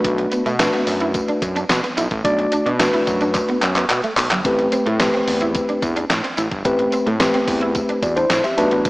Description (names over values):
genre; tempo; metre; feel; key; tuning
early-eighties boogie funk; 109 BPM; 4/4; straight; A dorian; A4 = 440 Hz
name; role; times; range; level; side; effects
mellow tine electric piano; accompaniment; 0.0-8.9 s; A3 to E5; -19 LUFS; left 1 dB; medium stereo tremolo, slapback echo
fat analog bass; bass; 0.0-8.9 s; G1 to B2; -23 LUFS; equal; none
clean 12-bit digital drum machine; drums; 0.0-8.9 s; handclaps, hi-hat, kick drum, snare drum; -22 LUFS; equal; none
tambourine; percussion; 0.0-8.9 s; none; -36 LUFS; left 1 dB; none
electric guitar at the edge of break-up; riff; 0.2-8.8 s; F#3 to E4; -26 LUFS; right 1 dB; ensemble chorus, slapback echo
room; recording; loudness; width
moderate lush hall reverb, RT60 2.3 s; big arena sound, small speaker sound; -16 LUFS; side -21 dB against mid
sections
0.0-8.9 A section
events
drum fill 3.3-4.5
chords
0.0 Bm7; 4.5 Am9